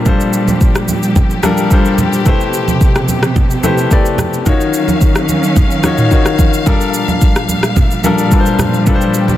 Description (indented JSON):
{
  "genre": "amapiano",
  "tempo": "109 BPM",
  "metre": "4/4",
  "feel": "straight",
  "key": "unclear",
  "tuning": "A4 = 440 Hz",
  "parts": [
    { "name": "clear baby grand piano", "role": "accompaniment", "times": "0.0-9.4 s", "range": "Eb3 to D5", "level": "-15 LUFS", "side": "left 4 dB", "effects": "none" },
    { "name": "warm studio string section", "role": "sustained chords", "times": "0.0-9.4 s", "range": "Bb2 to F5", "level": "-17 LUFS", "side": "right 1 dB", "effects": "none" },
    { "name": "afro-pop drum kit", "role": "drums", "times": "0.1-9.4 s", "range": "kick drum, rim click, shaker, toms", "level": "-13 LUFS", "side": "equal", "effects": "soft clipping on snare" },
    { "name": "congas", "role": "percussion", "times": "0.1-9.4 s", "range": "none", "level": "-19 LUFS", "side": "right 3 dB", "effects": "none" }
  ],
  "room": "small room ambience",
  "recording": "dense, heavily limited modern master",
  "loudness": "-10 LUFS",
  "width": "side -13 dB against mid",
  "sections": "0.0-9.4 A section",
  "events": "none",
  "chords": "0.0 Gm9; 2.3 Am9; 4.5 Ebm9; 6.7 Gm9"
}